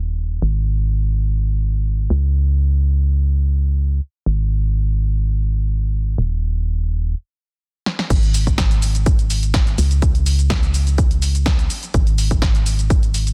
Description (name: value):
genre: piano house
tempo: 125 BPM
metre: 4/4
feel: straight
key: unclear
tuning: A4 = 440 Hz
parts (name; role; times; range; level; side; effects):
- organ-like FM bass; bass; 0.0-13.3 s; D#1 to C#2; -20 LUFS; equal; sidechain pumping
- punchy analog drum machine; drums; 7.9-13.3 s; crash cymbal, hi-hat, shaker, snare drum; -27 LUFS; equal; studio reverb
- electronic kick drum; drums; 8.1-13.0 s; none; -20 LUFS; equal; studio reverb
room: digital ambience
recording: dense, heavily limited modern master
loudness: -18 LUFS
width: mono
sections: 0.0-8.1 A section; 8.1-13.3 B section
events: stop 7.1-8.1; drum fill 7.9; drop 8.1-13.3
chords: none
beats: | 0.42 0.90 1.38 1.86 | 2.34 2.82 3.30 3.78 | 4.26 4.74 5.22 5.70 | 6.18 6.66 7.14 7.62 | 8.10 8.58 9.06 9.54 | 10.02 10.50 10.98 11.46 | 11.94 12.42 12.90